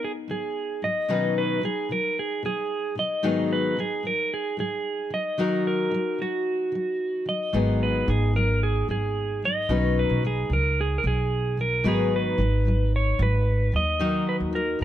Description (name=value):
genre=acoustic pop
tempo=112 BPM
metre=4/4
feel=straight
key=G# minor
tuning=A4 = 439 Hz
part: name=clean lap steel guitar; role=melody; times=0.0-14.8 s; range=F#4 to D#5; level=-26 LUFS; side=right 2 dB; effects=none
part: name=fingerpicked steel-string acoustic guitar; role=accompaniment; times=0.0-14.8 s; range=G#2 to B4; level=-27 LUFS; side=left 3 dB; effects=none
part: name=upright bass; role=bass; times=7.5-14.8 s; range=G#1 to F#2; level=-24 LUFS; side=right 1 dB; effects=none
room=light reverb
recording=close, detailed microphones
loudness=-22 LUFS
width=side -12 dB against mid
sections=0.0-14.8 A section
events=none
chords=0.0 G#m7; 1.1 Badd9; 3.2 G#m7; 5.1 D#m; 7.5 G#m7; 9.7 Badd9; 11.8 G#m7; 13.7 D#m